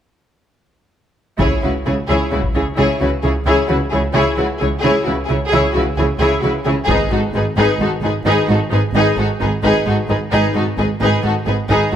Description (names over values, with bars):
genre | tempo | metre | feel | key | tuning
cinematic, epic orchestral film score | 87 BPM (dotted quarters) | 12/8 | straight | C# minor | A4 = 440 Hz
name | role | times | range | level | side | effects
rich symphonic violin section | melody | 1.4-12.0 s | A4 to C#5 | -25 LUFS | left 5 dB | none
clear symphonic violin section | second line | 1.4-11.9 s | F#4 to G#4 | -20 LUFS | left 2 dB | none
clear symphonic viola section | accompaniment | 1.4-12.0 s | D#4 to E4 | -21 LUFS | right 1 dB | none
bright symphonic cello section | bass | 1.4-12.0 s | G#2 to C#3 | -20 LUFS | right 1 dB | none
rich symphonic double bass section | bass | 1.4-12.0 s | G#1 to C#2 | -21 LUFS | right 2 dB | none
taiko ensemble | drums | 1.4-2.6, 6.9-7.8 s | none | -22 LUFS | equal | none
room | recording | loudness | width
moderate scoring stage reverb, RT60 1.9 s | none | -14 LUFS | side -9 dB against mid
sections
1.4-12.0 A section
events
none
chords
1.4 C#m; 6.9 G#m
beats
| 1.40 2.09 2.77 3.46 | 4.15 4.83 5.52 6.20 | 6.88 7.57 8.26 8.94 | 9.63 10.31 11.01 11.70